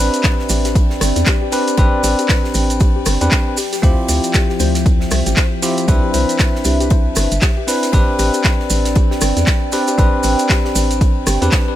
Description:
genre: deep house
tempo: 117 BPM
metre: 4/4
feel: swing 59% on 16ths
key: A minor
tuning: A4 = 440 Hz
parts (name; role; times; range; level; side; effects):
- soft round pluck; arpeggios; 0.0-11.7 s; G4 to C5; -28 LUFS; left 8 dB; chorus, sidechain pumping, ping-pong delay
- bell-like tine electric piano; stabs; 0.0-11.8 s; C4 to B4; -20 LUFS; left 1 dB; sidechain pumping, ping-pong delay
- hollow knocking FM bass; bass; 0.0-11.5 s; G1 to E2; -18 LUFS; equal; tube saturation, sidechain pumping
- warbly tape-like pad; texture; 0.0-11.8 s; F3 to G5; -24 LUFS; equal; chorus, built-in reverb, sidechain pumping
- punchy analog drum machine; drums; 0.1-11.6 s; handclaps, hi-hat, rim click; -22 LUFS; equal; none
- maracas; percussion; 0.1-11.6 s; none; -25 LUFS; right 3 dB; none
- electronic kick drum; drums; 0.2-11.6 s; none; -15 LUFS; equal; none
- modern studio drum kit; drums; 0.2-11.7 s; hi-hat, ride cymbal, snare drum; -30 LUFS; left 2 dB; sidechain pumping on cymbals, high-pass filter on cymbals, sidechain pumping on hats, high-pass filter on hats, high-pass filter on snare, high-pass filter on room
room: small room ambience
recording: none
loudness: -13 LUFS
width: side -12 dB against mid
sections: 0.0-11.8 A section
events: none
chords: 0.0 Am11; 3.6 Dm11; 5.9 Cmaj9; 7.9 Am11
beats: 0.24 0.75 1.27 | 1.78 2.29 2.81 3.32 | 3.83 4.34 4.86 5.37 | 5.88 6.39 6.91 7.42 | 7.93 8.45 8.96 9.47 | 9.98 10.50 11.01 11.52

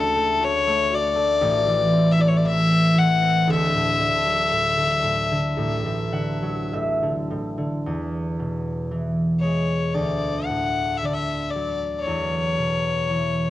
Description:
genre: celtic folk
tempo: 51-61 BPM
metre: 4/4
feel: rubato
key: unclear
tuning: A4 = 440 Hz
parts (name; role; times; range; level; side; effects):
- bright fiddle; melody; 0.0-13.5 s; A4 to F#5; -22 LUFS; left 4 dB; none
- concert harp; accompaniment; 0.0-13.5 s; D1 to F#5; -22 LUFS; right 1 dB; cassette tape
room: small room ambience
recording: home recording on cassette, nothing above 10.3 kHz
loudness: -20 LUFS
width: side -14 dB against mid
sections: 0.0-7.9 A section; 7.9-13.5 B section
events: harp fill 5.6-7.9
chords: 0.0 D; 1.4 Am; 3.5 Dadd9; 7.9 E; 10.0 D; 12.1 E5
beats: 0.42 1.43 2.46 | 3.50 4.53 5.59 6.73 | 7.86 8.90 9.95 11.02 | 12.05 13.08

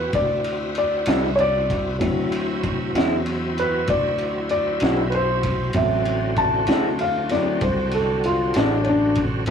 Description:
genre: slow blues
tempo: 64 BPM (dotted quarters)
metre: 12/8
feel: straight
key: D mixolydian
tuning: A4 = 440 Hz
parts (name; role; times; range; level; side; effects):
- dark baby grand piano; accompaniment; 0.0-9.5 s; F#3 to A5; -22 LUFS; left 1 dB; none
- bright tonewheel organ; sustained chords; 0.0-9.5 s; C#3 to A4; -28 LUFS; equal; chorus vibrato, slow rotary speaker
- fingered electric bass; bass; 0.0-9.5 s; A1 to E2; -27 LUFS; equal; none
- crunchy breakbeat drum kit; drums; 0.1-9.5 s; kick drum, ride cymbal, snare drum; -27 LUFS; equal; none
- electric guitar through a small old amp; accompaniment; 1.1-9.5 s; D3 to F#4; -23 LUFS; right 1 dB; harmonic tremolo
room: light reverb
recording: rough rehearsal-room recording, tube saturation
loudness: -19 LUFS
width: side -7 dB against mid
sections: 0.0-9.5 A section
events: grand piano solo 0.0-9.5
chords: 0.0 D9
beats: 0.14 1.08 | 2.01 2.95 3.88 4.82 | 5.75 6.69 7.62 8.55 | 9.49

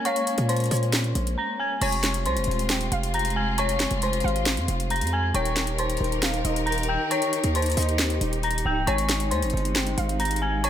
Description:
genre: hip hop, trap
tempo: 136 BPM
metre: 4/4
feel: half-time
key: F minor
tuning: A4 = 440 Hz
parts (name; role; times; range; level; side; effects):
- dark detuned synth bell; melody; 0.0-10.7 s; C5 to Bb6; -27 LUFS; left 2 dB; chorus, low-pass filter, digital delay
- clear symphonic string section; sustained chords; 0.0-10.7 s; C3 to Bb4; -30 LUFS; equal; none
- warbly dusty pluck; second line; 0.1-10.7 s; Db5 to Ab5; -35 LUFS; right 5 dB; chorus, digital delay
- trap drum kit; drums; 0.1-10.7 s; crash cymbal, handclaps, hi-hat, snare drum; -28 LUFS; equal; none
- distorted 808-style bass; bass; 0.4-10.7 s; Db1 to Bb2; -26 LUFS; equal; distortion
room: digital ambience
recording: none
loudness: -22 LUFS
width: side -10 dB against mid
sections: 0.0-1.8 A section; 1.8-10.7 B section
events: break 1.4-1.8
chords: 0.0 Bbm7; 1.8 Fm; 5.3 Eb; 8.9 Ab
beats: | 0.05 0.49 0.93 1.37 | 1.81 2.26 2.70 3.14 | 3.58 4.02 4.46 4.90 | 5.34 5.79 6.23 6.67 | 7.11 7.55 7.99 8.43 | 8.87 9.31 9.76 10.20 | 10.64

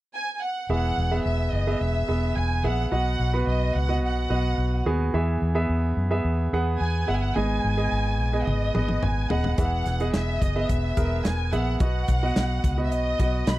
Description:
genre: piano-driven pop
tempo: 108 BPM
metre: 4/4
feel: straight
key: unclear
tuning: A4 = 440 Hz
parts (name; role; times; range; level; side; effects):
- warm studio violin section; melody; 0.1-13.6 s; D#5 to B5; -29 LUFS; equal; none
- clear baby grand piano; accompaniment; 0.7-13.6 s; G#2 to F#5; -28 LUFS; right 2 dB; none
- vintage muted fingered electric bass; bass; 0.7-13.6 s; D#1 to F#2; -25 LUFS; equal; none
- modern studio drum kit; drums; 8.5-13.6 s; hi-hat, kick drum, snare drum, toms; -26 LUFS; equal; none
room: little or no reverb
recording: dry, close 1970s-style studio recording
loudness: -22 LUFS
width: side -16 dB against mid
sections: 0.7-13.6 A section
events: drum fill 8.5-9.6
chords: 0.0 N.C.; 0.7 E; 2.9 B; 5.1 E; 7.4 G#m; 9.6 E; 11.8 B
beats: 0.14 | 0.69 1.25 1.81 2.36 | 2.92 3.47 4.03 4.58 | 5.14 5.70 6.25 6.81 | 7.36 7.92 8.47 9.03 | 9.58 10.14 10.70 11.25 | 11.81 12.36 12.92 13.47

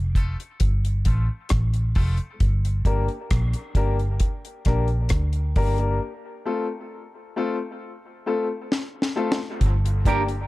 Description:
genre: dub reggae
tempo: 67 BPM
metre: 4/4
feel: straight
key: G minor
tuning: A4 = 440 Hz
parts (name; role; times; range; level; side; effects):
- vintage muted fingered electric bass; bass; 0.0-10.5 s; F1 to D2; -22 LUFS; equal; none
- warm baby grand piano; stabs; 0.2-10.3 s; A3 to Bb4; -28 LUFS; left 3 dB; high-pass filter, dub echo
- deep reggae drum kit; drums; 0.2-10.5 s; hi-hat, kick drum, rim click, snare drum; -23 LUFS; equal; none
- clean electric guitar; accompaniment; 10.1-10.2 s; D4 to Bb4; -25 LUFS; right 6 dB; wide subtle chorus, high-pass filter, dub echo
room: small room ambience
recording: dark, warm production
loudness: -21 LUFS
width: side -18 dB against mid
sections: 0.0-9.6 A section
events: break 0.0-9.6; drum fill 8.7-9.6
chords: 0.0 F; 2.4 Gm; 6.0 F; 9.6 Gm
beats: 0.61 1.51 | 2.41 3.31 4.21 5.11 | 6.01 6.91 7.81 8.71 | 9.61

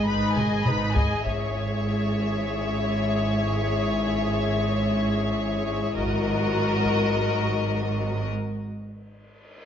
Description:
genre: cinematic, epic orchestral film score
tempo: free time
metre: none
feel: none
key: unclear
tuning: A4 = 440 Hz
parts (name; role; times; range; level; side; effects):
- warm studio violin section; melody; 0.0-8.3 s; D#5 to B5; -30 LUFS; left 4 dB; none
- rich symphonic violin section; second line; 0.0-8.3 s; A#4 to D#5; -31 LUFS; left 4 dB; none
- warm symphonic viola section; accompaniment; 0.0-8.3 s; D#4 to G#4; -32 LUFS; left 1 dB; none
- warm French horn section; sustained chords; 0.0-8.3 s; F#3 to E4; -32 LUFS; left 4 dB; none
- rich symphonic cello section; bass; 0.1-8.3 s; G#2; -28 LUFS; right 1 dB; none
- rich symphonic double bass section; bass; 0.1-8.3 s; G#1; -30 LUFS; right 2 dB; none
- taiko ensemble; drums; 0.4-2.4, 6.0-7.1 s; none; -29 LUFS; equal; none
- reverse cymbal; sound effects; 9.0-9.7 s; none; -51 LUFS; equal; none
room: wet scoring stage reverb, RT60 1.8 s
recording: nothing above 7.7 kHz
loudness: -22 LUFS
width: side -8 dB against mid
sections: 0.0-1.3 A section; 1.3-9.7 B section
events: drum fill 0.4-1.3; break 8.3-9.7; reverse cymbal 9.0-9.7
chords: 0.0 G#m; 1.3 C#m/G#; 6.0 D#m/G#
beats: free time

